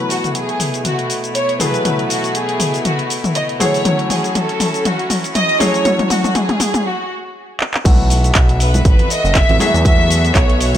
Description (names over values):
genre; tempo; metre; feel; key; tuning
nu-disco, nu disco; 120 BPM; 4/4; swing 56% on 16ths; unclear; A4 = 440 Hz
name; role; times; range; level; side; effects
dark studio violin section; melody; 0.0-10.8 s; F#4 to E5; -19 LUFS; equal; ping-pong delay
warm concert grand piano; accompaniment; 0.0-10.8 s; E3 to G#4; -23 LUFS; left 1 dB; sidechain pumping, ping-pong delay
rich chamber string section; sustained chords; 0.0-10.8 s; B2 to E5; -24 LUFS; equal; sidechain pumping, low-pass filter
pop drum kit; drums; 0.1-10.8 s; cabasa, crash cymbal, handclaps, hi-hat, toms; -19 LUFS; left 1 dB; none
fat analog bass; bass; 7.9-10.8 s; F#1 to E2; -15 LUFS; equal; sidechain pumping
electronic kick drum; drums; 7.9-10.5 s; none; -13 LUFS; equal; none
congas; percussion; 7.9-10.8 s; none; -23 LUFS; right 1 dB; none
room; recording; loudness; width
light reverb, small room reverb; none; -13 LUFS; side -11 dB against mid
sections
0.0-7.9 A section; 7.9-10.8 B section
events
build-up 0.0-7.9; drum fill 0.0-6.9, 7.6; break 6.9-7.9; drop 7.9-10.8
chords
0.0 B7sus4; 3.9 F#m7; 7.9 B7sus4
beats
0.35 0.85 1.35 | 1.85 2.35 2.85 3.35 | 3.85 4.35 4.85 5.35 | 5.85 6.35 6.85 7.35 | 7.85 8.35 8.85 9.35 | 9.85 10.35